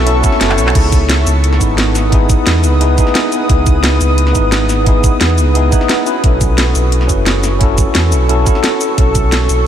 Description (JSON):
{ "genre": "liquid drum and bass", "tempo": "175 BPM", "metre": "4/4", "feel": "straight", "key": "C# minor", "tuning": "A4 = 440 Hz", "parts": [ { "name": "tine electric piano", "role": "accompaniment", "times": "0.0-9.7 s", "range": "B3 to B4", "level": "-16 LUFS", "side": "equal", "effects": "medium stereo tremolo, diffuse ambient delay" }, { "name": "shimmering ambient pad", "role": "sustained chords", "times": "0.0-9.7 s", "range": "A4 to D#6", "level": "-20 LUFS", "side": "right 1 dB", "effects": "chorus, built-in reverb, vintage 12-bit sampler grit" }, { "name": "Celtic harp", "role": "arpeggios", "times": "0.0-3.5 s", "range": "B3 to F#4", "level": "-29 LUFS", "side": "equal", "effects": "none" }, { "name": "sub bass with octave", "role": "bass", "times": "0.0-9.7 s", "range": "F#1 to E2", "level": "-13 LUFS", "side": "equal", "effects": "none" }, { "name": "drum and bass drum kit", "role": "drums", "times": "0.1-9.6 s", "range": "crash cymbal, handclaps, hi-hat, shaker, snare drum", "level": "-18 LUFS", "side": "equal", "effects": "none" }, { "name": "electronic kick drum", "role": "drums", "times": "0.2-9.2 s", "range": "none", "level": "-12 LUFS", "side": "equal", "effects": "none" } ], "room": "moderate cathedral reverb, RT60 5.8 s", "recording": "dreamy mix soaked in reverb", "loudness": "-10 LUFS", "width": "side -10 dB against mid", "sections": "0.8-9.7 A section", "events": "drum fill 0.5; drop 0.8-9.7", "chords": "0.0 B9sus4; 0.8 C#m9; 6.1 B9sus4" }